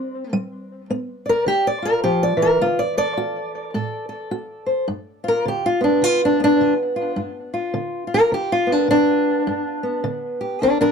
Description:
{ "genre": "acoustic country blues, solo or duo", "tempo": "105 BPM", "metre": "4/4", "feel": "swing 60% on 8ths", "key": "G mixolydian", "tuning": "A4 = 438 Hz", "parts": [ { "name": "fingerpicked old ladder-braced acoustic guitar", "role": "solo", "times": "0.0-10.9 s", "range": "G2 to D5", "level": "-18 LUFS", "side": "equal", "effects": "analog delay" } ], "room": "light reverb", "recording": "close, detailed microphones", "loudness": "-18 LUFS", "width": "side -6 dB against mid", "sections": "0.0-4.9 A section; 4.9-10.9 A section", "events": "steel-string acoustic guitar solo 0.0-4.9, 4.9-10.9", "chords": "0.3 G7; 2.6 D; 4.9 G7" }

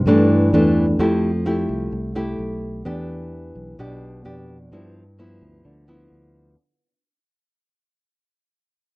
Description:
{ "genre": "bossa nova", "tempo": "129 BPM", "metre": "4/4", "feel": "straight", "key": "unclear", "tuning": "A4 = 440 Hz", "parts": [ { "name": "nylon-string guitar", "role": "accompaniment", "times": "0.0-6.6 s", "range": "G2 to G4", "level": "-19 LUFS", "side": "equal", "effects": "none" }, { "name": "fingered electric bass", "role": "bass", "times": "0.0-6.5 s", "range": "B1 to G2", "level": "-24 LUFS", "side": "equal", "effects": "none" } ], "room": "light reverb", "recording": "worn, warbling old tape, cassette tape, warbly pitch drift", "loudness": "-17 LUFS", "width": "side -22 dB against mid", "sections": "0.0-6.6 A section", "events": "fade-out 0.0-6.6", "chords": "0.0 C69 (rootless); 1.0 Fmaj9; 2.9 Em7; 4.7 G6" }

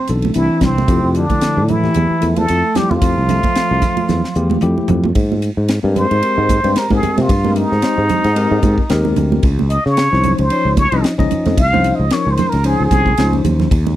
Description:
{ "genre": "electric jazz fusion", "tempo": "112 BPM", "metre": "4/4", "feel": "swing 56% on 16ths", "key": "unclear", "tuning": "A4 = 441 Hz", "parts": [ { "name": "trumpet with plunger mute", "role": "melody", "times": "0.0-13.4 s", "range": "C4 to F5", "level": "-18 LUFS", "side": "right 1 dB", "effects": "slapback echo" }, { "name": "dark bass clarinet", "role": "second line", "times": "0.0-4.6 s", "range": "C3 to C4", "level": "-23 LUFS", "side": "right 5 dB", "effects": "none" }, { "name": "tine electric piano", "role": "accompaniment", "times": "0.1-13.7 s", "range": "E3 to E5", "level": "-20 LUFS", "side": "left 4 dB", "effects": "medium stereo tremolo" }, { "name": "sustaining fretless electric bass", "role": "bass", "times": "0.1-14.0 s", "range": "B1 to Db3", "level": "-16 LUFS", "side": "equal", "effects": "none" }, { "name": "crisp fusion drum kit", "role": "drums", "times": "0.1-13.9 s", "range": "hi-hat, kick drum, ride cymbal, snare drum, toms", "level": "-19 LUFS", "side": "equal", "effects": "none" }, { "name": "congas", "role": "percussion", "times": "0.2-14.0 s", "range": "none", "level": "-22 LUFS", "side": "right 8 dB", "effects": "none" } ], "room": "little or no reverb", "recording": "dry, close 1970s-style studio recording", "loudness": "-12 LUFS", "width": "side -13 dB against mid", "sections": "0.0-5.2 A section; 5.2-14.0 B section", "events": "drum fill 4.1-5.2, 13.1-13.7; muted trumpet solo 5.2-14.0", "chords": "0.0 Cmaj9; 0.9 Fmaj9; 5.2 Abmaj9; 9.4 Dbmaj9" }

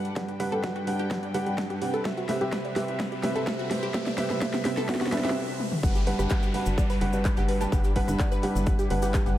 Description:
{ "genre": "progressive house", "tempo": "127 BPM", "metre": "4/4", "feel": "straight", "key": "G major", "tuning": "A4 = 440 Hz", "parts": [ { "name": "warm studio string section", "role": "sustained chords", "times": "0.0-9.4 s", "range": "C3 to G5", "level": "-36 LUFS", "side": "left 2 dB", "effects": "sidechain pumping" }, { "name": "felt-muted upright piano", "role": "stabs", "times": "0.0-9.4 s", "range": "G2 to A5", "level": "-30 LUFS", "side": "right 2 dB", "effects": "sidechain pumping, tape echo" }, { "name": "riser and downlifter", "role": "sound effects", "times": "0.7-9.4 s", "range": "none", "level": "-42 LUFS", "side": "equal", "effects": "none" }, { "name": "big-room dance drum kit", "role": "drums", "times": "0.1-9.4 s", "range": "crash cymbal, handclaps, hi-hat, rim click, snare drum, toms", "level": "-32 LUFS", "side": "equal", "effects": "overdrive, studio reverb, sidechain pumping on hats, sidechain pumping on toms, sidechain pumping on cymbals" }, { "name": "tight sequencer bass", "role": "bass", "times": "0.2-9.4 s", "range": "G1 to G2", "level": "-31 LUFS", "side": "equal", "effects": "sidechain pumping, high-pass filter" }, { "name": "electronic kick drum", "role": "drums", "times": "0.2-9.2 s", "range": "none", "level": "-26 LUFS", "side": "equal", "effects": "overdrive, high-pass filter on kick, studio reverb" }, { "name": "wide unison pluck", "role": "arpeggios", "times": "0.3-9.3 s", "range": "D4 to D5", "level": "-34 LUFS", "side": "equal", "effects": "sidechain pumping, tape echo" }, { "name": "cabasa", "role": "percussion", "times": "5.8-9.4 s", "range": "none", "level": "-45 LUFS", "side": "left 6 dB", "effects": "none" } ], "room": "light reverb", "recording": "none", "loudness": "-24 LUFS", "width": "side -13 dB against mid", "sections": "0.0-5.8 A section; 5.8-9.4 B section", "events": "build-up 0.0-5.8; drum fill 0.0-5.4, 5.6; filter sweep on synth pluck 0.0-5.8; riser 0.7-5.8; break 5.4-5.8; drop 5.8-9.4", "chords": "0.0 Gmaj7" }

